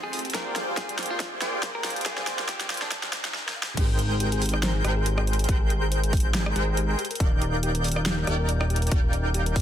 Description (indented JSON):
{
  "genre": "future bass",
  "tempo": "140 BPM",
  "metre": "4/4",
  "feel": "swing 55% on 16ths, half-time",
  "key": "Ab lydian",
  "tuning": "A4 = 439 Hz",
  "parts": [
    { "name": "clean electric guitar", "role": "melody", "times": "0.0-3.0 s", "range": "D4 to Bb4", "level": "-37 LUFS", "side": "left 1 dB", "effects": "sidechain pumping, tape echo" },
    { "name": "shimmering ambient pad", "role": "sustained chords", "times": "0.0-3.3 s", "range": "D3 to G5", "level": "-41 LUFS", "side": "equal", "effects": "none" },
    { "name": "thumb-piano-like synth pluck", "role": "arpeggios", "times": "0.0-9.6 s", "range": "F4 to F5", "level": "-38 LUFS", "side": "left 5 dB", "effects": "chorus, vintage 12-bit sampler grit, sidechain pumping, ping-pong delay" },
    { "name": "supersaw stab", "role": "riff", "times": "0.0-9.6 s", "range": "Ab3 to A5", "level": "-30 LUFS", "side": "equal", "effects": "sidechain pumping, ping-pong delay" },
    { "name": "riser", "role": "sound effects", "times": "0.1-3.3 s", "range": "none", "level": "-42 LUFS", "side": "right 2 dB", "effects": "none" },
    { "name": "big-room dance drum kit", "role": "drums", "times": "0.1-9.6 s", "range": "crash cymbal, hi-hat, rim click, snare drum", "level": "-30 LUFS", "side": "equal", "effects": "overdrive" },
    { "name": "electronic kick drum", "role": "drums", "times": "0.3-9.6 s", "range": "none", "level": "-24 LUFS", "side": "equal", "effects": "overdrive" },
    { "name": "airy dreamy lead", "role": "arpeggios", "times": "3.8-9.6 s", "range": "G6", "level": "-36 LUFS", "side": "left 1 dB", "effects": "chorus, sidechain pumping, ping-pong delay" },
    { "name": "fat analog bass", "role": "bass", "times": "3.8-9.6 s", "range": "Eb1 to Ab1", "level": "-25 LUFS", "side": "equal", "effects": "sidechain pumping" }
  ],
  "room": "light reverb",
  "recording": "dense, heavily limited modern master, high-pass filter",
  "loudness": "-23 LUFS",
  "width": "side -10 dB against mid",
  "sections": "0.0-3.8 A section; 3.8-9.6 B section",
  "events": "build-up 0.0-3.8; drum fill 0.0-3.3, 3.3-3.8; drop 3.8-9.6",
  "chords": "0.1 Bb13; 3.8 Abmaj7; 7.0 Ebmaj7"
}